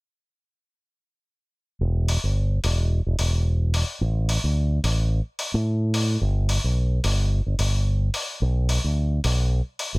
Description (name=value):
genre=nu-disco, nu disco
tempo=109 BPM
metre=4/4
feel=swing 55% on 16ths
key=E minor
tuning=A4 = 440 Hz
part: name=fingered electric bass with an envelope filter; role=bass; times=1.8-10.0 s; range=E1 to A2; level=-21 LUFS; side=equal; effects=none
part: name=electronic hi-hat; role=drums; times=2.1-9.9 s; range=none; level=-29 LUFS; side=left 2 dB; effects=none
room=digital ambience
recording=none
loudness=-21 LUFS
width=side -26 dB against mid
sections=1.8-10.0 A section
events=filter sweep on fingered electric bass 1.8-10.0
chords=none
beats=| 1.81 2.36 2.91 3.46 | 4.01 4.56 5.11 5.66 | 6.21 6.76 7.32 7.87 | 8.42 8.97 9.52